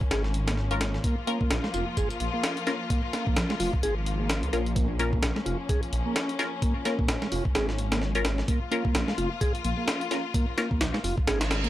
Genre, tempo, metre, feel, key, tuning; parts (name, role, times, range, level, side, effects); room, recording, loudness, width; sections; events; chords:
breakbeat, breaks; 129 BPM; 4/4; swing 58% on 16ths; Bb minor; A4 = 440 Hz
rich studio string section; sustained chords; 0.0-11.7 s; F3 to F4; -34 LUFS; left 4 dB; sidechain pumping
breakbeat sampler-style drum kit; drums; 0.0-11.7 s; hi-hat, kick drum, snare drum; -28 LUFS; equal
mellow tonewheel organ; riff; 0.1-11.7 s; Ab3 to Ab4; -32 LUFS; right 1 dB; slow rotary speaker, vintage 12-bit sampler grit, tape echo
phased detuned saw bass; bass; 0.1-11.7 s; F1 to Db2; -29 LUFS; equal; phaser
filtered dub chord stab; stabs; 0.7-10.7 s; Db4 to Bb4; -31 LUFS; left 3 dB; phaser, tape echo
reverse cymbal; sound effects; 11.4-11.7 s; -32 LUFS; right 4 dB
little or no reverb; dry, gritty hardware recording; -25 LUFS; side -14 dB against mid
0.0-11.7 A section
reverse cymbal 11.4-11.7
0.0 Bbm